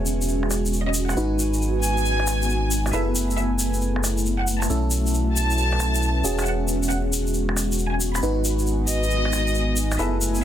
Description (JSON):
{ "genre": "UK garage, two-step garage", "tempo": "136 BPM", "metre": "4/4", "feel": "swing 65% on 16ths", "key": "unclear", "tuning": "A4 = 440 Hz", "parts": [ { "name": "rich studio violin section", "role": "melody", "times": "0.0-10.2 s", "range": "D#5 to B5", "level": "-28 LUFS", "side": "left 1 dB", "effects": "ping-pong delay" }, { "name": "warm analog pad", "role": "sustained chords", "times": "0.0-10.4 s", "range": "G#3 to G#5", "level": "-30 LUFS", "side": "left 1 dB", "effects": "chorus" }, { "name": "FM electric piano", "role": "stabs", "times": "0.0-10.4 s", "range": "C#4 to B4", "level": "-29 LUFS", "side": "equal", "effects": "chorus, phaser, low-pass filter, ping-pong delay" }, { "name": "saturated sub bass", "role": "bass", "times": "0.0-10.4 s", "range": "E1 to B1", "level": "-24 LUFS", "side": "equal", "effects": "tube saturation" }, { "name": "granular cloud pad", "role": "texture", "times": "0.0-10.4 s", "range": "A3 to G#5", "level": "-30 LUFS", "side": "right 2 dB", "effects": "built-in reverb" }, { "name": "egg shaker", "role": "percussion", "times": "0.1-10.4 s", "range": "none", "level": "-28 LUFS", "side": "left 1 dB", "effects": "none" }, { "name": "electronic finger snaps", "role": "drums", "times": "0.4-10.0 s", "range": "none", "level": "-33 LUFS", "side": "equal", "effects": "overdrive, soft clipping on snare, low-pass filter on snare, low-pass filter on room" } ], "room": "digital ambience", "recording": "dense, heavily limited modern master", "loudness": "-20 LUFS", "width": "side -10 dB against mid", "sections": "0.0-10.4 A section", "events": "filter sweep on analog synth pad 0.0-10.4", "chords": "0.0 E69; 1.2 G#m7; 2.9 F#m11; 4.7 B9sus4; 6.2 E69; 8.2 G#m7" }